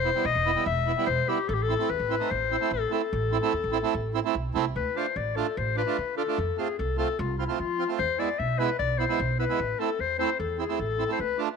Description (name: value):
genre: klezmer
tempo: 148 BPM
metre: 4/4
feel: straight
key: A minor, D dorian sharp4 from 4.8 s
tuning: A4 = 440 Hz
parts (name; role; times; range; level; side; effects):
- clear clarinet; melody; 0.0-11.4 s; E4 to E5; -27 LUFS; left 8 dB; none
- accordion; accompaniment; 0.0-11.5 s; G3 to F4; -30 LUFS; right 14 dB; none
- upright bass; bass; 0.0-11.3 s; E1 to F3; -31 LUFS; right 2 dB; none
room: light reverb, small room ambience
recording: 1960s-style stereo with parts hard left and right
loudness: -25 LUFS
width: side -6 dB against mid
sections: 0.0-4.8 A section; 4.8-11.6 B section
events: speeding up 0.0-11.6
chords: 0.0 Em; 1.5 Am; 4.8 Dm; 6.4 F; 8.0 E; 9.6 Am